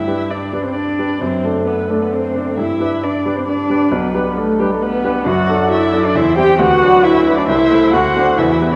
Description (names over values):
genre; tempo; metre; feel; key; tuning
quick classical-period movement for piano quartet; 134 BPM; 3/4; rubato; G major; A4 = 441 Hz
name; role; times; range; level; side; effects
muted violin; melody; 0.0-8.8 s; G4 to G5; -24 LUFS; equal; none
muted cello; second line; 0.0-8.8 s; G3 to G4; -18 LUFS; equal; none
clear grand piano; accompaniment; 0.0-8.8 s; B1 to C5; -20 LUFS; equal; none
muted viola; accompaniment; 0.3-8.8 s; B4 to D5; -28 LUFS; equal; none
room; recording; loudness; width
wet recital hall reverb, RT60 1.6 s; recorded in a church or concert hall, nothing above 10.4 kHz; -15 LUFS; mono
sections
0.0-8.8 A section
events
none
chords
0.0 G; 1.2 D7/F#; 2.6 G; 3.9 G/B; 5.3 D/F#; 6.2 C/E; 6.6 Bm/D; 7.5 Am/C; 7.9 D7